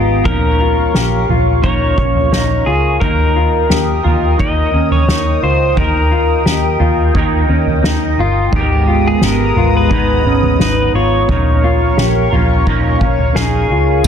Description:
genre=dream pop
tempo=87 BPM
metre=4/4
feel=straight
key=Eb mixolydian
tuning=A4 = 440 Hz
part: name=pedal steel guitar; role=melody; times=0.0-14.1 s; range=F4 to Eb5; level=-18 LUFS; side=equal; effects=tape echo
part: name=semi-hollow electric guitar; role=accompaniment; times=0.0-14.1 s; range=Ab2 to Bb4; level=-24 LUFS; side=right 5 dB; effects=tremolo, ensemble chorus
part: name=phased analog pad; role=sustained chords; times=0.0-14.1 s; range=Ab3 to Eb6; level=-21 LUFS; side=right 1 dB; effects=phaser, chorus
part: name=mellow electric guitar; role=arpeggios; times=0.0-14.1 s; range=Db4 to G4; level=-19 LUFS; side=left 4 dB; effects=wide subtle chorus, tape echo
part: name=vintage muted fingered electric bass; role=bass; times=0.0-14.1 s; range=G1 to Eb2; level=-17 LUFS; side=equal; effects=none
part: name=soft-mallet drum kit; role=drums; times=0.3-14.1 s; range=crash cymbal, kick drum, snare drum, tambourine, toms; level=-16 LUFS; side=equal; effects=none
room=light reverb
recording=dense, heavily limited modern master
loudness=-11 LUFS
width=side -8 dB against mid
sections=0.0-14.0 A section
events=none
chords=0.3 Bbm; 3.0 Eb; 8.5 Abmadd9; 11.3 Bbm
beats=| 0.26 0.94 1.64 2.32 | 3.01 3.70 4.39 5.08 | 5.77 6.46 7.15 7.84 | 8.53 9.22 9.91 10.60 | 11.29 11.98 12.67 13.36 | 14.05

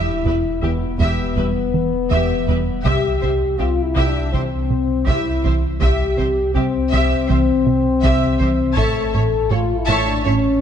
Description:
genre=cinematic, hybrid orchestral and electronic film score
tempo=81 BPM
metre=4/4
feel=straight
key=unclear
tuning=A4 = 439 Hz
part: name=warm symphonic violin section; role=second line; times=0.0-10.3 s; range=G4 to A5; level=-27 LUFS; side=left 3 dB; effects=none
part: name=rich studio viola section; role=accompaniment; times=0.0-10.3 s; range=G4 to E5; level=-26 LUFS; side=right 3 dB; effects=none
part: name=warm French horn section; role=sustained chords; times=0.0-10.6 s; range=B3 to A4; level=-20 LUFS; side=left 5 dB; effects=none
part: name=harp-like synth pluck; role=arpeggios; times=0.0-10.5 s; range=C3 to A4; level=-28 LUFS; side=right 2 dB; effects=chorus, tape echo
part: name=tight sequencer bass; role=riff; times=0.0-10.5 s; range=C2 to E3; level=-22 LUFS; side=right 2 dB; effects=none
part: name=pure sine sub bass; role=bass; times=0.0-10.6 s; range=E1 to C2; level=-25 LUFS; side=equal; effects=none
part: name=dark symphonic cello section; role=bass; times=0.2-10.3 s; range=E2 to C3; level=-29 LUFS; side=right 4 dB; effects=none
part: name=rich symphonic double bass section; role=bass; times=0.3-10.3 s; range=E1 to C2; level=-30 LUFS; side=right 4 dB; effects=none
part: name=taiko ensemble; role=drums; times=2.9-9.5 s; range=none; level=-27 LUFS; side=equal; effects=none
room=moderate concert hall reverb, RT60 2.3 s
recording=nothing above 10.7 kHz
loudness=-16 LUFS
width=side -8 dB against mid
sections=0.0-10.6 A section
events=none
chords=0.0 Em; 2.8 C; 8.8 A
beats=0.63 1.37 2.11 | 2.85 3.59 4.33 5.07 | 5.81 6.55 7.29 8.03 | 8.77 9.52 10.26

